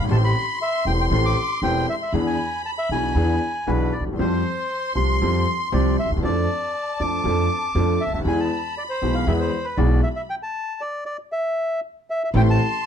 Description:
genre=tango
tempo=118 BPM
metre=4/4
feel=rubato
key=A minor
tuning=A4 = 440 Hz
part: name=bandoneon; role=melody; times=0.0-12.9 s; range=B4 to D6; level=-26 LUFS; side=equal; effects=none
part: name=warm studio violin section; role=second line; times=0.0-12.9 s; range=A5 to C6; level=-30 LUFS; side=left 3 dB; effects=none
part: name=clear upright piano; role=accompaniment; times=0.0-12.6 s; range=E1 to A4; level=-23 LUFS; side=left 1 dB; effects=none
part: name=upright bass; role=bass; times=0.0-12.6 s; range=E1 to F2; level=-22 LUFS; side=right 1 dB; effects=none
part: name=dark symphonic string section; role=stabs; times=12.3-12.6 s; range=A3 to E4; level=-25 LUFS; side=right 1 dB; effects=none
room=moderate club reverb, RT60 0.7 s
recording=dark, warm production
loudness=-20 LUFS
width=side -8 dB against mid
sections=0.0-12.4 A section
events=stop 10.3-12.4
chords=0.1 Am7; 2.1 E7; 4.2 Fsus2; 6.2 Dm/F; 8.3 E; 10.3 N.C.; 12.4 Am

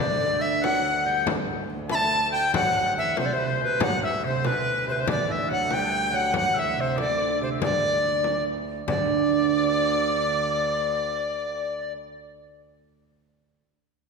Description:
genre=medieval dance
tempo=94 BPM (dotted quarters)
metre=6/8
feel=straight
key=D mixolydian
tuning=A4 = 440 Hz
part: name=bright reedy tenor recorder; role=melody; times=0.0-11.9 s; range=B4 to B5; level=-25 LUFS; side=left 1 dB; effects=none
part: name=clear shawm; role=second line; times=0.0-11.9 s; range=B4 to A5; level=-30 LUFS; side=left 4 dB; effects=none
part: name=lute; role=second line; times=0.0-11.9 s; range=B2 to A3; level=-29 LUFS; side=right 8 dB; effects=none
part: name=clear viola da gamba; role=drone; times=0.0-11.9 s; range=D2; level=-35 LUFS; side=right 2 dB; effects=none
part: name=frame drum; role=percussion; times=0.4-9.1 s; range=none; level=-30 LUFS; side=left 3 dB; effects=none
room=wet scoring stage reverb, RT60 1.9 s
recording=recorded in a church or concert hall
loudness=-22 LUFS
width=side -4 dB against mid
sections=0.0-8.9 A section; 8.9-11.4 B section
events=none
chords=none

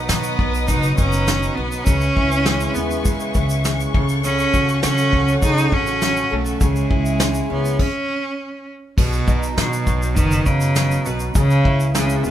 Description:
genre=acoustic pop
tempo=101 BPM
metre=4/4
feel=straight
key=unclear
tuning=A4 = 438 Hz
part: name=clear cello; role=melody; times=0.0-12.3 s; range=B2 to D#4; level=-21 LUFS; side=right 1 dB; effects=none
part: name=fingerpicked twelve-string acoustic guitar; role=accompaniment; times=0.0-12.3 s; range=B2 to B4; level=-25 LUFS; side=right 2 dB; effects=none
part: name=warm studio string section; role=sustained chords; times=0.0-7.8 s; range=G#4 to D#6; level=-28 LUFS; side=left 4 dB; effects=none
part: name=upright bass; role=bass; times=0.0-12.3 s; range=F#1 to C#3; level=-21 LUFS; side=equal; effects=none
part: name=soft brush drum kit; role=drums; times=0.1-12.3 s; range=crash cymbal, kick drum, shaker, snare drum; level=-21 LUFS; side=equal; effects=none
room=light reverb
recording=band playing live in one room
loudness=-16 LUFS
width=side -11 dB against mid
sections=0.0-9.0 A section; 9.0-12.3 A section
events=stop 7.8-9.0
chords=0.0 B; 1.9 C#m7; 3.9 F#m/C#; 6.6 C#m; 9.0 B; 11.4 C#m7

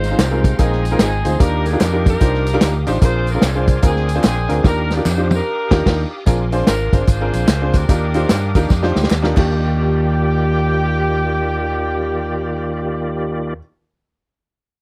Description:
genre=uptempo gospel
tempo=148 BPM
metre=4/4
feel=swing 63% on 8ths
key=Eb major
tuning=A4 = 440 Hz
part: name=mellow saxophone section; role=melody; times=0.0-13.5 s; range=Bb3 to D5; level=-25 LUFS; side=equal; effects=none
part: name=clear upright piano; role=accompaniment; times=0.0-13.6 s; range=Eb2 to C5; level=-24 LUFS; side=equal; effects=none
part: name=bright tonewheel organ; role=sustained chords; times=0.0-13.5 s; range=Eb3 to Eb6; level=-28 LUFS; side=equal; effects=slow rotary speaker, overdrive, chorus vibrato
part: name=fingered electric bass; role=bass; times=0.0-13.6 s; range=G1 to G2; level=-22 LUFS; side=equal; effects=none
part: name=warm soul drum kit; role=drums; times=0.0-9.4 s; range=crash cymbal, hi-hat, kick drum, snare drum, toms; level=-18 LUFS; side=equal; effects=none
part: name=tambourine and handclaps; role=percussion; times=0.0-9.7 s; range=none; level=-35 LUFS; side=equal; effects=none
room=little or no reverb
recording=dry, close 1970s-style studio recording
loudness=-17 LUFS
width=mono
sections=0.0-6.3 A section; 6.3-9.5 B section; 9.5-12.8 C section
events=drum fill 4.6-6.3, 8.7-9.5; band accent 5.5-6.3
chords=0.0 Ab69; 0.6 Bb9sus4; 1.4 Ebmaj9; 3.0 Bb9; 4.6 Ebmaj9; 6.3 Bb9; 7.9 Ebmaj9

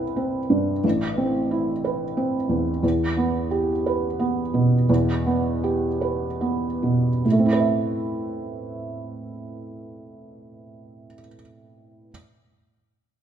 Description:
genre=classical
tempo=47-61 BPM (dotted quarters)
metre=6/8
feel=rubato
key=A minor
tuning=A4 = 439 Hz
part: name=felt-muted upright piano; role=accompaniment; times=0.0-12.1 s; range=A1 to E5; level=-21 LUFS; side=right 2 dB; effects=none
room=light reverb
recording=minimal, uncompressed stereo recording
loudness=-20 LUFS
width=side -9 dB against mid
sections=0.0-7.2 A section; 7.2-12.1 B section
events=slowing down 1.8-7.2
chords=0.0 Cmaj7; 0.8 Amadd9; 2.8 Em; 7.2 Amadd9

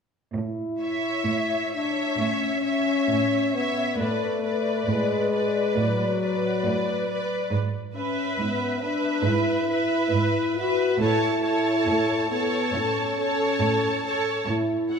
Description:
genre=classical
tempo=68 BPM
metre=4/4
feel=rubato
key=A major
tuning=A4 = 442 Hz
part: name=rich symphonic cello section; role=bass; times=0.3-15.0 s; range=G#2 to A2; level=-30 LUFS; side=right 4 dB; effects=none
part: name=warm French horn section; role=sustained chords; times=0.4-15.0 s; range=F#3 to F#4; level=-26 LUFS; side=left 2 dB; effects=none
part: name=warm symphonic violin section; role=melody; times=0.8-15.0 s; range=D5 to A5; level=-30 LUFS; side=left 1 dB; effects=none
part: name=rich symphonic violin section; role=second line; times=0.8-15.0 s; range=B4 to E5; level=-30 LUFS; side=left 1 dB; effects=none
part: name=clear symphonic viola section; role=accompaniment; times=0.8-15.0 s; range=A4 to C#5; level=-30 LUFS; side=right 4 dB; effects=none
room=wet concert hall reverb, RT60 1.8 s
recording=minimal, uncompressed stereo recording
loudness=-22 LUFS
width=side -6 dB against mid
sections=0.3-15.0 A section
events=none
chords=0.3 A; 4.0 Bm7/A; 7.5 E/G#; 11.0 A; 14.5 N.C.

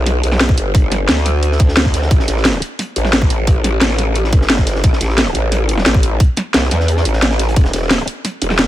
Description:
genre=dark technical drum and bass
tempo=176 BPM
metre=4/4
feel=straight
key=E minor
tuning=A4 = 440 Hz
part: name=growl bass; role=bass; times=0.0-8.7 s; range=E1 to E2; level=-16 LUFS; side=equal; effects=chorus, overdrive, sidechain pumping
part: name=crunchy breakbeat drum kit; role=drums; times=0.1-8.7 s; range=hi-hat, snare drum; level=-27 LUFS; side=equal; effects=none
part: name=drum and bass drum kit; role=drums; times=0.1-8.7 s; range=hi-hat, snare drum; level=-16 LUFS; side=equal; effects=none
part: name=electronic kick drum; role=drums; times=0.5-7.6 s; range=none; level=-12 LUFS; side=equal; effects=none
room=small room ambience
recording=none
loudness=-12 LUFS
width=side -14 dB against mid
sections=0.0-8.7 A section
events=kick drops out 6.9-7.6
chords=none

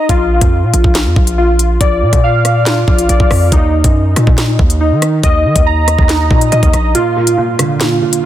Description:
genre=hip hop, drill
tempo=140 BPM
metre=4/4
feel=half-time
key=unclear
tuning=A4 = 439 Hz
part: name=warbly lo-fi synth keys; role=arpeggios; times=0.0-8.2 s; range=Eb4 to Bb5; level=-14 LUFS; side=left 1 dB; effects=chorus, low-pass filter, digital delay
part: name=hard-hitting 808-style bass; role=bass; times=0.1-6.9 s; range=Bb1 to Eb3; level=-13 LUFS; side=equal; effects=none
part: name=drill drum kit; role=drums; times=0.1-8.2 s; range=handclaps, hi-hat, kick drum, rim click, snare drum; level=-13 LUFS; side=equal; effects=none
part: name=felt-muted upright piano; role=accompaniment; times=6.9-8.3 s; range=Bb2 to D3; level=-14 LUFS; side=right 4 dB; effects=low-pass filter
room=little or no reverb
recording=dense, heavily limited modern master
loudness=-9 LUFS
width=side -12 dB against mid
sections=0.0-8.3 A section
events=break 6.9-8.3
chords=0.1 Bb; 3.5 Eb5; 6.9 Bb

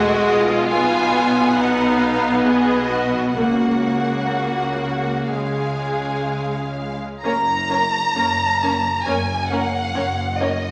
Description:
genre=classical, slow romantic movement for string orchestra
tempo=59-74 BPM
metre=4/4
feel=rubato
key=F# major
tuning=A4 = 441 Hz
part: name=warm studio violin section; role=melody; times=0.0-10.7 s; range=D#5 to A#5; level=-25 LUFS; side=equal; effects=none
part: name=warm studio violin section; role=second line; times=0.0-10.5 s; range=D#4 to C#5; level=-27 LUFS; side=equal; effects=none
part: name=rich studio viola section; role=accompaniment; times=0.0-10.5 s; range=G#3 to C#4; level=-23 LUFS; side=equal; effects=none
part: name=rich studio cello section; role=bass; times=0.0-10.7 s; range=F#2 to C#3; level=-30 LUFS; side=equal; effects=none
part: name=rich studio double bass section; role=bass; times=0.0-10.7 s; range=F#1 to C#2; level=-33 LUFS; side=equal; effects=none
room=wet recital hall reverb, RT60 1.6 s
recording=none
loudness=-20 LUFS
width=mono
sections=0.0-7.2 A section; 7.2-10.7 B section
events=none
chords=0.0 G#m7/B; 3.4 C#sus4; 5.3 C#; 7.2 F#

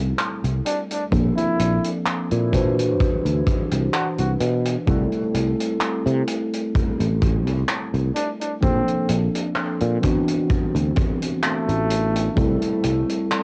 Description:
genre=vaporwave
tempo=64 BPM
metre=4/4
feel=swing 54% on 16ths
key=C lydian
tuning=A4 = 441 Hz
part: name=mellow tine electric piano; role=accompaniment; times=0.0-13.4 s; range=E3 to C5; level=-26 LUFS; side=equal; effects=lush chorus, tape echo
part: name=sustaining fretless electric bass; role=bass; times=0.0-13.0 s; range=A1 to C3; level=-24 LUFS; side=equal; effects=tube saturation
part: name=vintage drum kit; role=drums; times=0.2-13.4 s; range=handclaps, hi-hat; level=-31 LUFS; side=equal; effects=none
part: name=mellow flugelhorn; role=melody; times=0.7-12.5 s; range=A3 to F#4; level=-30 LUFS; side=equal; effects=cassette tape, tape echo
part: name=kick drum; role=drums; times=1.1-12.6 s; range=none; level=-26 LUFS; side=equal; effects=none
room=light reverb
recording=home recording on cassette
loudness=-22 LUFS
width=mono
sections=0.0-13.4 A section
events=none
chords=0.0 C6; 1.1 Bbmaj9; 2.5 D13; 4.9 C6; 8.6 Bbmaj9; 10.0 D13; 12.4 C6

